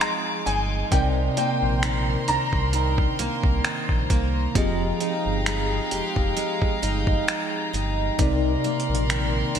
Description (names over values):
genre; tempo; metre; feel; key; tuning
contemporary R&B; 66 BPM; 4/4; swing 54% on 16ths; F dorian; A4 = 440 Hz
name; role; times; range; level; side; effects
warm baby grand piano; melody; 0.0-3.6 s; G5 to Bb5; -28 LUFS; equal; ensemble chorus, digital delay
mellow tine electric piano; accompaniment; 0.0-9.6 s; C3 to Eb5; -28 LUFS; left 1 dB; medium stereo tremolo
warm studio string section; sustained chords; 0.0-9.6 s; Ab3 to D6; -30 LUFS; left 1 dB; none
picked steel-string acoustic guitar; arpeggios; 0.0-9.6 s; C3 to G4; -30 LUFS; right 5 dB; lush chorus, digital delay
dusty soul sampler-style drum kit; drums; 0.0-9.6 s; finger snaps, hi-hat, kick drum; -26 LUFS; equal; overdrive, gated reverb
sub bass with octave; bass; 0.5-9.6 s; F1 to C2; -26 LUFS; equal; none
room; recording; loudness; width
moderate lush hall reverb, RT60 2.9 s; bright 1980s-style digital production; -21 LUFS; side -8 dB against mid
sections
0.0-9.6 A section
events
none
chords
0.0 Fm9; 0.9 Cm9; 4.6 Fm9; 8.2 Cm9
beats
0.01 | 0.92 1.83 2.74 3.65 | 4.55 5.46 6.37 7.28 | 8.19 9.10